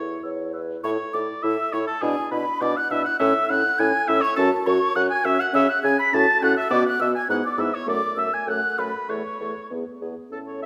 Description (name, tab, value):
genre	quick classical-period movement for wind quintet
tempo	102 BPM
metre	2/4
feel	rubato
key	A major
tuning	A4 = 440 Hz
part	warm oboe	second line	0.0-10.7 s	G#4 to B5	-29 LUFS	equal	none
part	dark clarinet	accompaniment	0.0-10.7 s	E4 to E5	-32 LUFS	equal	none
part	warm French horn	accompaniment	0.0-10.7 s	A3 to E4	-32 LUFS	equal	none
part	dark bassoon	bass	0.0-10.7 s	E2 to C#3	-30 LUFS	equal	none
part	mellow hollow concert flute	melody	0.2-10.7 s	G#5 to B6	-26 LUFS	equal	none
room	wet recital hall reverb, RT60 1.9 s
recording	none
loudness	-22 LUFS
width	mono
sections	0.8-10.3 A section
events	none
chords	0.2 E5; 0.8 A5; 2.0 E5/B; 3.2 A; 4.4 F#5; 5.5 C#5; 6.1 F#m/A; 6.7 B5; 7.3 E/G#; 7.9 F#m11; 9.1 A/E; 9.7 E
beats	0.23 | 0.84 1.43 | 2.02 2.62 | 3.21 3.79 | 4.38 4.96 | 5.54 6.13 | 6.71 7.29 | 7.88 8.47 | 9.09 9.71 | 10.32